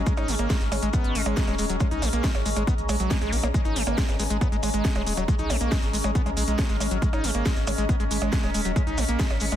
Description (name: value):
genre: psychedelic trance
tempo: 138 BPM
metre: 4/4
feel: straight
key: unclear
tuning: A4 = 444 Hz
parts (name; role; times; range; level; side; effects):
- overtone-sweeping drone; sustained chords; 0.0-9.6 s; C#4; -33 LUFS; left 4 dB; chorus, built-in reverb, sidechain pumping
- screaming distorted acid line; riff; 0.0-9.6 s; F#3 to D#4; -29 LUFS; right 1 dB; distortion, chorus, auto-pan, sidechain pumping, tape echo
- round analog bass; bass; 0.0-9.6 s; D#1 to A#1; -28 LUFS; equal; none
- ethereal airy pad; texture; 0.0-9.6 s; G#4 to A#5; -35 LUFS; equal; ensemble chorus, built-in reverb, sidechain pumping
- electronic kick drum; drums; 0.1-9.3 s; none; -25 LUFS; equal; overdrive
- techno drum kit; drums; 0.1-9.6 s; hi-hat, percussion blips, snare drum; -31 LUFS; right 1 dB; overdrive
- maracas; percussion; 0.1-9.6 s; none; -37 LUFS; right 1 dB; none
- swell; sound effects; 2.8-3.5 s; none; -38 LUFS; equal; none
- formant-sweep wobble bass; second line; 3.9-6.2 s; G#3 to B3; -42 LUFS; left 4 dB; none
room: light reverb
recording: dense, heavily limited modern master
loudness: -22 LUFS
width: side -11 dB against mid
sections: 0.0-9.6 A section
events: none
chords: 0.0 G#5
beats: | 0.07 0.50 0.94 1.37 | 1.80 2.24 2.67 3.11 | 3.54 3.98 4.41 4.85 | 5.28 5.72 6.15 6.59 | 7.02 7.46 7.89 8.33 | 8.76 9.20